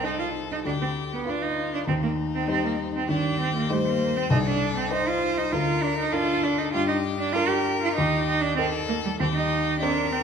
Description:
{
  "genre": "quick classical-period movement for piano trio",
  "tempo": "98 BPM",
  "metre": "4/4",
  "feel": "straight",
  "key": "unclear",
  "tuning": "A4 = 436 Hz",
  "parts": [
    { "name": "clear violin", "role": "melody", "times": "0.0-10.2 s", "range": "Eb4 to C5", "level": "-30 LUFS", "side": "left 7 dB", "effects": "none" },
    { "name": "clear cello", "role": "second line", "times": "0.0-10.2 s", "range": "G3 to G4", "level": "-25 LUFS", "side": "right 4 dB", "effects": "none" },
    { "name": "warm baby grand piano", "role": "accompaniment", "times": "0.0-10.2 s", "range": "C2 to C5", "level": "-27 LUFS", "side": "left 1 dB", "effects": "none" }
  ],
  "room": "wet recital hall reverb, RT60 1.6 s",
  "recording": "none",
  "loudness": "-22 LUFS",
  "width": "side -7 dB against mid",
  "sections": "0.0-10.2 A section",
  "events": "none",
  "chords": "0.0 Cm; 0.6 G7/D; 1.9 Cm/Eb; 4.3 Adim/C; 5.5 Bb/D; 6.7 Gm; 8.0 Eb; 9.2 Cm/Eb",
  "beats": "0.03 0.64 1.26 | 1.86 2.47 3.08 3.69 | 4.30 4.91 5.51 6.12 | 6.74 7.35 7.96 8.58 | 9.20 9.82"
}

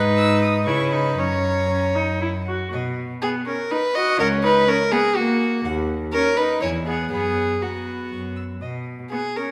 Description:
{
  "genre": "quick classical-period movement for string quartet",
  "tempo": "121 BPM",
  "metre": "3/4",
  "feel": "rubato",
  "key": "B major",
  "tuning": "A4 = 440 Hz",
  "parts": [
    { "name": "rich violin", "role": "second line", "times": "0.0-9.5 s", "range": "F#4 to D#5", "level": "-24 LUFS", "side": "equal", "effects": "none" },
    { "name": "rich viola", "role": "accompaniment", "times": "0.0-9.5 s", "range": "A#3 to F#4", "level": "-27 LUFS", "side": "equal", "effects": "none" },
    { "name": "rich cello", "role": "bass", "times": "0.0-9.0 s", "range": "C#2 to C#3", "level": "-28 LUFS", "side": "equal", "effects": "none" },
    { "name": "warm violin", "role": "melody", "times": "0.2-8.8 s", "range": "D#5 to E6", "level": "-34 LUFS", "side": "equal", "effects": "none" }
  ],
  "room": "wet recital hall reverb, RT60 1.6 s",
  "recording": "recorded in a church or concert hall",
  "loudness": "-22 LUFS",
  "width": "mono",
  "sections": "0.0-2.7 A section; 2.7-9.5 B section",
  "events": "none",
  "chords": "0.0 G#m; 0.7 C#m7; 1.2 F#; 2.7 B; 4.2 F#/C#; 5.6 D#m7; 6.6 C#m/E (rootless); 7.1 B5/F#; 8.6 B",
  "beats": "0.17 0.67 | 1.18 1.70 2.21 | 2.72 3.22 3.70 | 4.19 4.68 5.16 | 5.64 6.13 6.62 | 7.12 7.62 8.12 | 8.61 9.11"
}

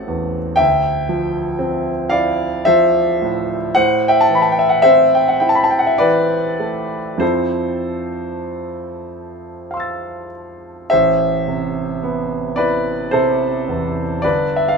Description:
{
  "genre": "classical, impressionist solo piano",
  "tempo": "46-60 BPM",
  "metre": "3/4",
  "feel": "rubato",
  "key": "A minor",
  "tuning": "A4 = 440 Hz",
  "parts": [
    { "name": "clear concert grand piano", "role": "solo", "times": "0.0-14.8 s", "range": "G1 to A6", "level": "-15 LUFS", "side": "equal", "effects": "none" }
  ],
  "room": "light reverb",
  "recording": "minimal, uncompressed stereo recording",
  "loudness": "-14 LUFS",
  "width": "side -4 dB against mid",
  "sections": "0.0-10.9 A section; 10.9-14.8 B section",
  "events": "none",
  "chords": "0.0 Am6; 0.6 Dm9; 3.8 Am; 7.2 Fmaj7; 10.9 Amadd9; 14.2 G",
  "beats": "| 0.59 1.60 2.67 | 3.77 4.84 5.99 | 7.21 8.50 9.70 | 10.91 12.03 13.12 | 14.23"
}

